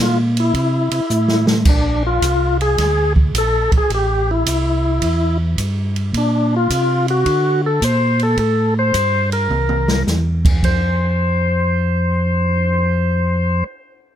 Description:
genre	soul jazz organ trio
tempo	107 BPM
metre	4/4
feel	swing 68% on 8ths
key	F major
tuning	A4 = 441 Hz
part	percussive tonewheel organ	melody	0.0-13.6 s	D4 to C5	-18 LUFS	left 2 dB	slow rotary speaker
part	mellow tonewheel organ	bass	0.0-13.6 s	A1 to D3	-18 LUFS	equal	overdrive, chorus vibrato, slow rotary speaker
part	open jazz drum kit	drums	0.4-12.8 s	crash cymbal, cymbal swell, hi-hat, kick drum, ride cymbal, snare drum, toms	-20 LUFS	right 1 dB	none
room	little or no reverb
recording	none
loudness	-14 LUFS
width	side -10 dB against mid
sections	0.0-1.7 A section; 1.7-10.6 B section; 10.6-12.9 C section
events	drum fill 1.1-1.7, 9.5-10.1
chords	0.0 N.C.; 0.5 C6; 1.7 Bb5; 2.8 Bb7; 3.9 Am; 5.0 Em; 6.1 Bb5; 7.3 Bbmaj7#5; 8.4 Am7; 9.5 C7; 10.6 F5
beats	0.54 1.10 | 1.66 2.22 2.78 3.34 | 3.90 4.46 5.02 5.58 | 6.14 6.70 7.26 7.82 | 8.38 8.94 9.50 10.06 | 10.62 11.19 11.75 12.31

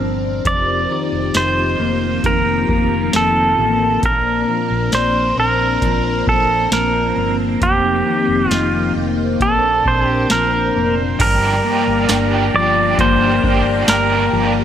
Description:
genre	dream pop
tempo	67 BPM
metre	4/4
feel	straight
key	Bb major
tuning	A4 = 441 Hz
part	phased string machine	sustained chords	0.0-14.6 s	F3 to Bb5	-22 LUFS	equal	ensemble chorus, phaser
part	mellow electric guitar	arpeggios	0.0-14.6 s	F2 to Eb4	-21 LUFS	left 6 dB	analog chorus, tape echo
part	hollow-body short-scale fingered electric bass	bass	0.0-14.6 s	F1 to Bb1	-23 LUFS	equal	none
part	pedal steel guitar	melody	0.5-14.5 s	G4 to D5	-17 LUFS	right 2 dB	tape echo
part	booming analog drum machine	drums	0.5-14.1 s	crash cymbal, hi-hat, kick drum, snare drum, tambourine	-19 LUFS	equal	overdrive
part	biting overdriven guitar	accompaniment	11.2-14.6 s	G2 to G4	-21 LUFS	right 4 dB	tremolo, ensemble chorus
room	moderate concert hall reverb, RT60 2.1 s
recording	none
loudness	-14 LUFS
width	side -9 dB against mid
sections	0.0-11.2 A section; 11.2-14.6 B section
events	none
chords	0.5 F7sus4; 4.0 Bbadd9; 7.6 F7sus4; 9.4 Bbadd9; 11.2 Gm7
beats	| 0.45 1.34 2.24 3.14 | 4.03 4.93 5.82 6.72 | 7.61 8.51 9.40 10.30 | 11.20 12.09 12.99 13.88

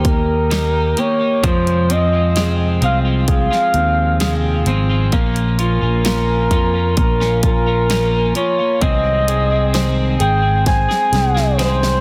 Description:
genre	pop ballad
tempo	65 BPM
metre	4/4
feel	straight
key	Ab major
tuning	A4 = 440 Hz
part	breathy flugelhorn	melody	0.0-12.0 s	Bb4 to Ab5	-21 LUFS	equal	none
part	warm concert grand piano	accompaniment	0.0-12.0 s	Eb3 to C5	-25 LUFS	equal	none
part	twelve-string electric guitar	arpeggios	0.0-12.0 s	F2 to Ab4	-26 LUFS	equal	subtle chorus, delay
part	sustaining fretless electric bass	bass	0.0-12.0 s	Ab1 to F2	-20 LUFS	equal	none
part	pop drum kit	drums	0.0-12.0 s	hi-hat, kick drum, snare drum	-22 LUFS	equal	none
room	light reverb, digital ambience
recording	dense, heavily limited modern master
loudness	-16 LUFS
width	mono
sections	0.0-12.0 A section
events	drum fill 10.7-12.0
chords	0.0 Eb; 1.4 Fm; 5.1 Bbm; 8.8 Ab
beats	0.51 | 1.44 2.36 3.28 4.21 | 5.13 6.05 6.97 7.90 | 8.82 9.74 10.67 11.59

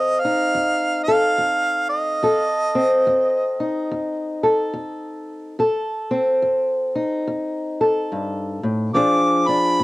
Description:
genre	acoustic country blues, solo or duo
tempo	71 BPM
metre	4/4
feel	swing 62% on 8ths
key	F mixolydian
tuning	A4 = 440 Hz
part	warm harmonica	melody	0.0-3.5, 9.0-9.8 s	Eb5 to D6	-20 LUFS	right 1 dB	tape echo
part	fingerpicked old ladder-braced acoustic guitar	accompaniment	0.0-9.8 s	F2 to A4	-20 LUFS	left 1 dB	cassette tape
room	light reverb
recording	home recording on cassette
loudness	-18 LUFS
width	side -19 dB against mid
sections	0.0-9.8 A section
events	none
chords	0.0 F7; 9.0 Bb7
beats	0.55 1.39 | 2.23 3.07 3.91 4.75 | 5.59 6.43 7.27 8.11 | 8.95 9.79

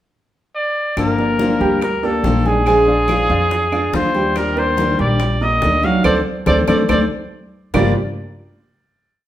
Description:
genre	latin, Cuban son and guajira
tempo	142 BPM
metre	4/4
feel	straight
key	G minor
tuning	A4 = 441 Hz
part	warm trumpet	melody	0.6-7.9 s	Ab4 to F5	-19 LUFS	equal	none
part	picked steel-string acoustic guitar	accompaniment	1.0-7.9 s	G2 to G4	-21 LUFS	left 4 dB	none
part	upright bass	bass	1.0-7.9 s	G1 to F2	-22 LUFS	equal	none
part	bongos	percussion	1.0-7.8 s	none	-27 LUFS	left 2 dB	none
part	claves	percussion	1.0-7.8 s	none	-30 LUFS	right 2 dB	none
part	congas	percussion	1.0-7.8 s	none	-27 LUFS	equal	none
part	warm baby grand piano	arpeggios	1.2-7.9 s	F#3 to D6	-19 LUFS	right 3 dB	none
room	wet large studio reverb, RT60 1.0 s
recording	band playing live in one room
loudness	-14 LUFS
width	side -12 dB against mid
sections	0.0-1.0 pickup bar; 1.0-7.7 verse; 7.7-9.3 final chord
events	band accent 6.0-7.7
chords	0.0 N.C.; 1.0 Gm7; 2.7 Bb7; 4.4 Ebmaj7; 6.0 D5; 7.7 Gm7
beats	0.12 0.54 | 0.97 1.39 1.82 2.24 | 2.66 3.09 3.51 3.93 | 4.36 4.78 5.20 5.62 | 6.05 6.47 6.89 7.32 | 7.74

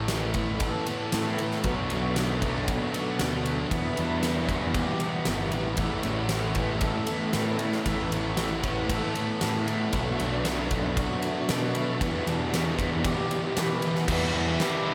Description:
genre	rock, shoegaze and dream pop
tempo	116 BPM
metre	4/4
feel	straight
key	E dorian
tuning	A4 = 441 Hz
part	electric guitar through a small old amp	arpeggios	0.0-14.9 s	E3 to A4	-36 LUFS	equal	lush chorus, tape echo
part	overdriven semi-hollow guitar	riff	0.0-14.9 s	E2 to A4	-35 LUFS	equal	reverse reverb
part	thick fuzz guitar	riff	0.0-14.9 s	E2 to B3	-33 LUFS	equal	distortion, analog chorus
part	fuzz picked electric bass	bass	0.0-14.6 s	G1 to E3	-34 LUFS	equal	overdrive
part	huge arena drum kit	drums	0.1-14.7 s	crash cymbal, kick drum, ride cymbal, snare drum	-34 LUFS	equal	none
room	wet huge ambient reverb, RT60 7.3 s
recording	dreamy mix soaked in reverb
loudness	-27 LUFS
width	mono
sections	0.0-14.1 A section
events	none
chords	0.0 Aadd9; 1.6 Bm7; 3.7 Em7; 5.8 Aadd9; 9.9 Bm7; 12.0 Em7; 14.1 Em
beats	0.10 0.61 1.13 | 1.65 2.16 2.68 3.20 | 3.71 4.23 4.75 5.27 | 5.79 6.30 6.82 7.34 | 7.86 8.38 8.89 9.41 | 9.93 10.45 10.97 11.49 | 12.01 12.53 13.04 13.56 | 14.08 14.60

